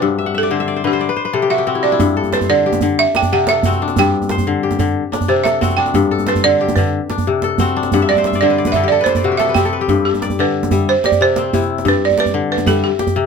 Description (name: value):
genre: west african traditional, West African string and xylophone music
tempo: 122 BPM (dotted quarters)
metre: 12/8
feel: straight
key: G major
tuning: A4 = 441 Hz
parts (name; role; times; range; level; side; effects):
- balafon; melody; 0.0-13.3 s; G4 to G5; -16 LUFS; right 6 dB; none
- kora; arpeggios; 0.0-13.3 s; G2 to F#5; -16 LUFS; left 6 dB; none
- djembe; percussion; 2.0-13.2 s; none; -20 LUFS; right 3 dB; none
room: little or no reverb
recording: close, detailed microphones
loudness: -13 LUFS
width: side -6 dB against mid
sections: 0.0-9.9 A section; 9.9-13.3 B section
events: balafon solo 0.0-9.9; kora fill 0.2-2.0, 7.9-9.9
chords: 0.0 G; 1.0 N.C.; 2.0 G5; 3.0 C; 4.0 G5; 5.0 C; 6.0 G5; 6.9 C5; 7.9 G5; 8.9 N.C.; 9.9 G; 10.9 C; 11.9 G